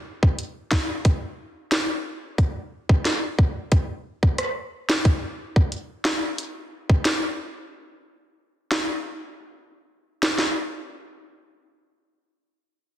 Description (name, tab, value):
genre	dancehall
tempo	90 BPM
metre	4/4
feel	straight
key	none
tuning	none
part	island pop drum kit	drums	0.2-10.5 s	hi-hat, kick drum, rim click, snare drum	-21 LUFS	equal	vintage 12-bit sampler grit
room	light reverb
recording	dense, heavily limited modern master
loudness	-21 LUFS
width	side -12 dB against mid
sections	0.0-5.0 A section; 5.0-10.4 B section; 10.4-13.0 C section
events	none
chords	none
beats	0.38 1.05 1.72 | 2.38 3.05 3.72 4.38 | 5.05 5.72 6.38 7.05 | 7.72 8.38 9.05 9.72 | 10.38